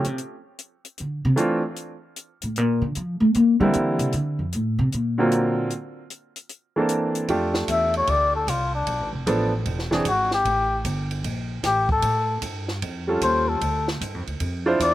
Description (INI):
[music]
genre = jazz, small-group swing and bop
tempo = 152 BPM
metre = 4/4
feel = swing 66% on 8ths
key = F major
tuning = A4 = 441 Hz
[part]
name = bright upright piano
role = accompaniment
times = 0.0-10.0, 13.1-14.9 s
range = D3 to C5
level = -23 LUFS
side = right 2 dB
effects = slapback echo
[part]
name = upright bass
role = bass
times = 0.0-14.9 s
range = E1 to Bb3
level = -24 LUFS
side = left 1 dB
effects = none
[part]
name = compact cocktail drum kit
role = drums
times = 0.0-14.9 s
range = hi-hat, kick drum, ride cymbal, snare drum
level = -31 LUFS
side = right 1 dB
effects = none
[part]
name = trumpet with cup mute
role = melody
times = 7.7-14.9 s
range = D4 to E5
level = -22 LUFS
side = left 3 dB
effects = slapback echo
[sound]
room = little or no reverb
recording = recorded outdoors, with no room sound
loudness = -20 LUFS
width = side -14 dB against mid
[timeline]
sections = 0.0-7.3 A section; 7.3-14.9 B section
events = upright bass solo 0.0-7.3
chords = 0.0 N.C.; 1.0 Dm9; 2.6 Bbmaj7; 3.3 C9; 4.1 F6; 4.9 D7alt; 5.7 N.C.; 6.5 C13; 7.3 F69; 8.9 Bm7b5; 9.7 E7b13; 10.5 Gmadd9; 12.0 Aaug7; 13.6 Dm9